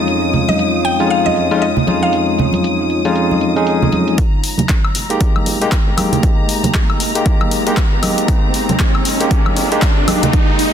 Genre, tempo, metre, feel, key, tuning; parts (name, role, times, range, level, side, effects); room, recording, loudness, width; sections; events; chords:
deep house; 117 BPM; 4/4; swing 59% on 16ths; F minor; A4 = 440 Hz
mallet-like synth pluck; melody; 0.0-3.6 s; Eb5 to G5; -20 LUFS; left 1 dB; chorus, dub echo
warbly tape-like pad; sustained chords; 0.0-10.7 s; F2 to C6; -24 LUFS; left 2 dB; chorus, built-in reverb, sidechain pumping
barky tine electric piano; stabs; 0.0-10.7 s; F2 to Ab4; -18 LUFS; equal; medium stereo tremolo, sidechain pumping, digital delay
rich studio violin section; texture; 0.0-10.7 s; Bb5 to Eb6; -25 LUFS; left 2 dB; sidechain pumping
punchy analog drum machine; drums; 0.1-10.7 s; handclaps, hi-hat, woodblock; -21 LUFS; left 3 dB; overdrive, low-pass filter on hats, low-pass filter on snare, low-pass filter on perc
congas; percussion; 0.3-10.3 s; -20 LUFS; right 2 dB
rubbery square bass; bass; 4.2-10.4 s; F1 to F2; -30 LUFS; equal
electronic kick drum; drums; 4.2-10.5 s; -15 LUFS; equal; overdrive
riser; sound effects; 4.9-10.7 s; -22 LUFS; right 1 dB
light reverb; dense, heavily limited modern master; -12 LUFS; side -8 dB against mid
0.0-4.2 A section; 4.2-10.7 B section
filter sweep on tine electric piano 0.0-4.2; build-up 4.2-10.7; riser 4.9-10.7
0.0 Dbadd9/F; 4.2 Fm11